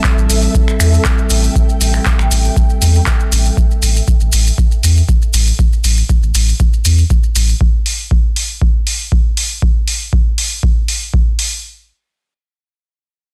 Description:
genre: acid house.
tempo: 119 BPM.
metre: 4/4.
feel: straight.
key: A minor.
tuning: A4 = 440 Hz.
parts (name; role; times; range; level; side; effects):
dark analog pad; sustained chords; 0.0-3.5 s; G3 to A4; -26 LUFS; equal; chorus, vintage 12-bit sampler grit, sidechain pumping.
electronic kick drum; drums; 0.0-11.2 s; none; -16 LUFS; equal; none.
punchy analog drum machine; drums; 0.0-11.5 s; finger snaps, handclaps, hi-hat; -21 LUFS; equal; none.
maracas; percussion; 0.0-7.6 s; none; -24 LUFS; equal; none.
ethereal airy pad; texture; 0.0-3.6 s; A4 to A5; -28 LUFS; equal; ensemble chorus, built-in reverb, tremolo, sidechain pumping.
warm sub bass; bass; 0.2-7.5 s; A1 to E2; -14 LUFS; equal; tube saturation, sidechain pumping.
room: digital ambience.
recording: dense, heavily limited modern master.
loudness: -14 LUFS.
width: mono.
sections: 0.0-11.6 A section.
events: none.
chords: 0.0 Am7.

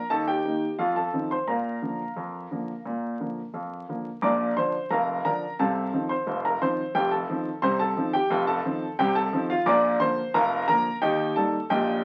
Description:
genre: ragtime piano.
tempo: 88 BPM.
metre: 2/4.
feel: straight.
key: Bb major.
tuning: A4 = 440 Hz.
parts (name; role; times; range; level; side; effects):
clear grand piano; solo; 0.0-12.0 s; F1 to D6; -26 LUFS; equal; none.
room: wet studio reverb, RT60 0.5 s.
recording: very old 78 rpm record, vinyl crackle.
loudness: -26 LUFS.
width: mono.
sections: 0.0-4.2 A section; 4.2-12.0 A section.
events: none.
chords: 0.1 Eb; 0.8 F7; 1.5 Bb; 5.6 F7/C; 6.9 F7; 9.7 Bb; 11.0 Eb.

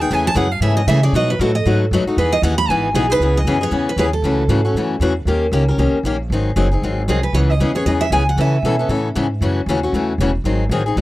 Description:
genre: acoustic string swing (jazz manouche).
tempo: 232 BPM.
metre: 4/4.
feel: swing 57% on 8ths.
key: E major, C# minor from 3.2 s.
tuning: A4 = 438 Hz.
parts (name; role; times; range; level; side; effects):
picked steel-string acoustic guitar; melody; 0.0-4.8, 7.1-8.9 s; G#4 to B5; -20 LUFS; right 3 dB; tape echo.
picked steel-string acoustic guitar; accompaniment; 0.0-11.0 s; B2 to A#4; -18 LUFS; left 2 dB; none.
upright bass; bass; 0.0-11.0 s; E1 to C#3; -19 LUFS; equal; none.
room: little or no reverb.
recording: dry, close 1970s-style studio recording.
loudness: -15 LUFS.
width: side -16 dB against mid.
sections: 0.0-3.2 A section; 3.2-11.0 B section.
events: steel-string acoustic guitar solo 0.0-3.2.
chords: 0.1 Amaj7; 1.1 B7; 2.2 Emaj7; 3.2 C#m7; 4.2 F#m7/C#; 5.3 D#7; 6.3 G#7; 7.3 C#m7; 8.4 Aadd9; 9.4 F#m7; 10.4 G#7.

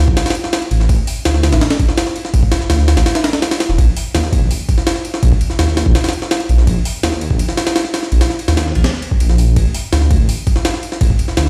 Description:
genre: drum and bass, jungle.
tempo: 166 BPM.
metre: 4/4.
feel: straight.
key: unclear.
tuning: A4 = 440 Hz.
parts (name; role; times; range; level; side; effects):
dark detuned saw bass; bass; 0.0-11.5 s; E1 to Eb2; -16 LUFS; equal; none.
jungle sampler-style drum kit; drums; 0.1-11.5 s; hi-hat, kick drum, ride cymbal, snare drum; -18 LUFS; equal; overdrive.
room: light reverb.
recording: played on a big sound system in a bare room, large studio reverb.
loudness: -15 LUFS.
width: mono.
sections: 0.0-11.5 A section.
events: none.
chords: none.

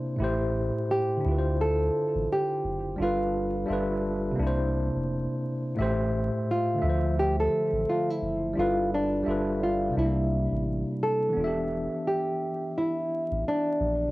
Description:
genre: lo-fi hip hop.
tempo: 86 BPM.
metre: 4/4.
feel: swing 59% on 16ths.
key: D minor.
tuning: A4 = 438 Hz.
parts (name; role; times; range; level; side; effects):
tine electric piano; accompaniment; 0.0-14.1 s; A2 to E5; -29 LUFS; equal; fast stereo tremolo, low-pass filter, cassette tape.
soft dub sub bass; bass; 0.2-14.1 s; E1 to D2; -31 LUFS; equal; none.
nylon-string guitar; melody; 0.9-14.1 s; D4 to A4; -27 LUFS; equal; low-pass filter.
room: moderate small room reverb, RT60 0.5 s.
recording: home recording on cassette, vinyl crackle.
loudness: -25 LUFS.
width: side -19 dB against mid.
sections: 0.0-11.4 A section; 11.4-14.1 B section.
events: none.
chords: 0.2 Am7; 1.2 Dm7; 3.0 G7; 3.7 G13; 4.4 C7; 5.8 Am7; 6.8 Dm7; 8.6 G7; 9.3 G13; 10.0 C7; 11.4 Em7.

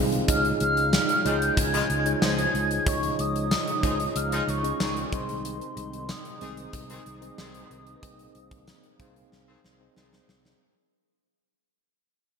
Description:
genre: 1980s-style pop.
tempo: 93 BPM.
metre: 4/4.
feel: straight.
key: Ab major.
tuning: A4 = 437 Hz.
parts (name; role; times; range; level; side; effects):
folk marimba with soft mallets; second line; 0.0-0.1, 7.4-9.3 s; Ab4 to C5; -51 LUFS; equal; none.
mellow tine electric piano; accompaniment; 0.0-10.6 s; C4 to F5; -31 LUFS; equal; medium stereo tremolo.
warm analog pad; sustained chords; 0.0-10.6 s; C3 to F4; -36 LUFS; right 2 dB; chorus.
fingered electric bass; bass; 0.0-10.5 s; C2 to Db2; -31 LUFS; equal; none.
gated 80s drum kit; drums; 0.1-10.6 s; hi-hat, kick drum, snare drum, tambourine; -28 LUFS; equal; gated reverb.
hollow clarinet-like synth lead; melody; 0.3-9.9 s; C6 to Ab6; -28 LUFS; equal; chorus.
warm horn section; stabs; 1.2-10.4 s; Db3 to Ab4; -35 LUFS; left 3 dB; digital delay.
room: moderate lush hall reverb, RT60 2.5 s.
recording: bright 1980s-style digital production.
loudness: -23 LUFS.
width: side -6 dB against mid.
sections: 0.0-10.6 A section.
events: fade-out 0.0-10.6; drum fill 9.3-10.6.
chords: 0.3 Dbadd9; 5.1 Ab/C.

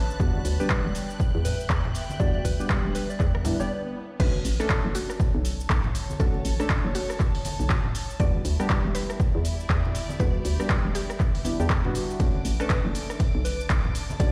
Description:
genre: deep house.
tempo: 120 BPM.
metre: 4/4.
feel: swing 60% on 16ths.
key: B minor.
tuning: A4 = 440 Hz.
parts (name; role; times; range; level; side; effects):
deep mellow chord stab; stabs; 0.0-14.3 s; G3 to A4; -35 LUFS; equal; chorus, sidechain pumping, digital delay.
hollow knocking FM bass; bass; 0.0-14.3 s; E1 to E2; -30 LUFS; equal; sidechain pumping.
dark studio string section; texture; 0.0-14.3 s; D3 to A5; -42 LUFS; equal; sidechain pumping.
string machine, violins; texture; 0.0-3.7, 12.2-14.3 s; D6 to F#6; -46 LUFS; equal; ensemble chorus.
deep house drum kit; drums; 0.1-14.3 s; crash cymbal, handclaps, hi-hat, ride cymbal, rim click, shaker; -35 LUFS; equal; overdrive, studio reverb.
electronic kick drum; drums; 0.2-14.3 s; none; -28 LUFS; equal; overdrive, studio reverb.
congas; percussion; 0.4-14.2 s; none; -37 LUFS; equal; sidechain pumping on perc.
soft struck synth lead; melody; 0.6-3.7, 12.6-14.3 s; B4 to D5; -38 LUFS; equal; chorus, delay.
swell; sound effects; 3.4-4.2 s; none; -41 LUFS; equal; none.
mallet-like synth pluck; melody; 4.2-11.2 s; F#4 to D5; -40 LUFS; equal; chorus, cassette tape, dub echo.
room: light reverb, digital ambience.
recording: played on a big sound system in a bare room, stone room reverb.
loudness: -26 LUFS.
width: mono.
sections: 0.0-4.2 A section; 4.2-14.3 B section.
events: swell 3.4-4.2; stop 3.7-4.2; drop 4.2-14.3.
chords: 0.2 Em7; 4.2 Bm9; 8.2 Em7; 12.2 Bm9.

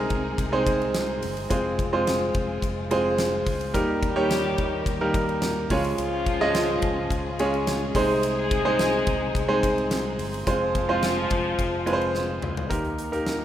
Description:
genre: piano-driven pop.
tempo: 107 BPM.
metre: 4/4.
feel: straight.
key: unclear.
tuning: A4 = 440 Hz.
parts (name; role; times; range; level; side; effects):
warm concert grand piano; accompaniment; 0.0-13.4 s; C3 to Eb5; -24 LUFS; right 1 dB; none.
dark studio string section; sustained chords; 0.0-13.4 s; C3 to Bb4; -36 LUFS; left 3 dB; none.
fretless electric bass; bass; 0.0-13.4 s; F1 to Eb2; -34 LUFS; left 1 dB; none.
huge arena drum kit; drums; 0.1-13.4 s; hi-hat, kick drum, ride cymbal, snare drum, toms; -30 LUFS; left 1 dB; none.
muted French horn section; second line; 3.7-12.4 s; F3 to Ab4; -30 LUFS; left 4 dB; none.
room: moderate lush hall reverb, RT60 2.0 s, small room ambience.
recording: rough home demo mix.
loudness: -22 LUFS.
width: side -11 dB against mid.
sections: 0.0-12.7 A section.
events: drum fill 12.1-12.7.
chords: 0.0 Ab/C; 1.5 Fm; 3.7 Eb; 5.7 Db; 7.9 Ab/C; 10.5 Fm; 12.7 Eb.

